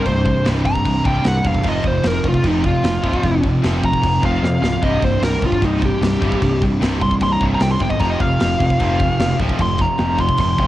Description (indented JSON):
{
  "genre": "heavy metal",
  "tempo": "151 BPM",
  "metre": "4/4",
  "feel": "straight",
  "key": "unclear",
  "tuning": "A4 = 440 Hz",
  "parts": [
    { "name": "high-gain lead guitar", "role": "melody", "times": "0.0-10.7 s", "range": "Eb4 to C6", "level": "-21 LUFS", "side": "equal", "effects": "distortion, cassette tape" },
    { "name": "fuzz guitar", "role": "riff", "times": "0.0-10.7 s", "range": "C2 to F3", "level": "-22 LUFS", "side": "equal", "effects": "distortion, cassette tape" },
    { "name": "high-gain distorted guitar", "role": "riff", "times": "0.0-10.7 s", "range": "C2 to F3", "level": "-26 LUFS", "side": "left 5 dB", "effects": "distortion, cassette tape" },
    { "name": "scooped high-gain guitar", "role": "riff", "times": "0.0-10.7 s", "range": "C2 to F3", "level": "-24 LUFS", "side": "right 5 dB", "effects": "distortion, cassette tape" },
    { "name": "modern bright picked electric bass", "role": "bass", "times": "0.1-10.7 s", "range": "C1 to F2", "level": "-22 LUFS", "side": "equal", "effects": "none" },
    { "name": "tight metal drum kit", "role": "drums", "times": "0.1-10.7 s", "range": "crash cymbal, kick drum, snare drum", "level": "-22 LUFS", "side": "equal", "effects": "cassette tape" }
  ],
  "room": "light reverb, studio ambience",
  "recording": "home recording on cassette",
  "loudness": "-15 LUFS",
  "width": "side -14 dB against mid",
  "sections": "0.0-10.7 A section",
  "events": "lead electric guitar solo 0.0-10.7; drum fill 4.4-4.8",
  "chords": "0.0 C5; 1.7 F5; 4.8 C5; 8.0 F5",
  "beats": "| 0.07 0.46 0.86 1.26 | 1.65 2.05 2.45 2.84 | 3.24 3.64 4.04 4.43 | 4.83 5.23 5.62 6.02 | 6.42 6.82 7.22 7.62 | 8.01 8.41 8.81 9.20 | 9.60 10.00 10.39"
}